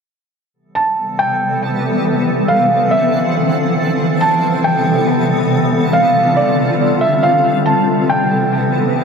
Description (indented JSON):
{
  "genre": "hip hop",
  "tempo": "139 BPM",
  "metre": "4/4",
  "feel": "half-time",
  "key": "A minor",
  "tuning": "A4 = 440 Hz",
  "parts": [
    { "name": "granular cloud pad", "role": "sustained chords", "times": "1.0-9.0 s", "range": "C3 to A4", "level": "-14 LUFS", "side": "left 1 dB", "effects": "built-in reverb" },
    { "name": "felt-muted upright piano", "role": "melody", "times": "0.8-8.7 s", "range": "D5 to A5", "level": "-16 LUFS", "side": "right 1 dB", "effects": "low-pass filter, tape echo" }
  ],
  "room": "wet spring reverb, RT60 2.3 s",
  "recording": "echo-heavy mix",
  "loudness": "-12 LUFS",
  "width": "side -5 dB against mid",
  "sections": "0.5-9.0 A section",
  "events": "none",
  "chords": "0.5 Am9; 2.3 Dm9; 4.0 Am9; 5.7 G9sus4; 7.4 Am9",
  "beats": "| 0.54 0.97 1.40 1.83 | 2.27 2.70 3.13 3.56 | 3.99 4.42 4.86 5.29 | 5.72 6.15 6.58 7.01 | 7.45 7.88 8.31 8.74"
}